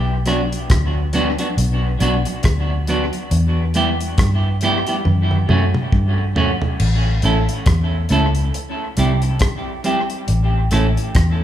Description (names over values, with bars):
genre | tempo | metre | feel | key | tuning
roots reggae | 69 BPM | 4/4 | swing 59% on 16ths | B minor | A4 = 439 Hz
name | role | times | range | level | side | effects
vintage muted fingered electric bass | bass | 0.0-11.4 s | A1 to G2 | -18 LUFS | equal | none
semi-hollow electric guitar | accompaniment | 0.3-10.9 s | F#3 to A4 | -21 LUFS | right 2 dB | warbly pitch drift, dub echo
damped 70s drum kit | drums | 0.3-11.4 s | crash cymbal, hi-hat, kick drum, rim click, toms | -21 LUFS | equal | dub echo
room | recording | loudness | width
moderate large studio reverb, RT60 1.4 s | band playing live in one room | -15 LUFS | side -11 dB against mid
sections
0.0-6.8 A section; 6.8-11.4 B section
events
drum fill 5.1-6.8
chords
0.0 Bm; 3.3 Em; 5.1 F#m; 6.8 A; 8.5 C; 10.3 A5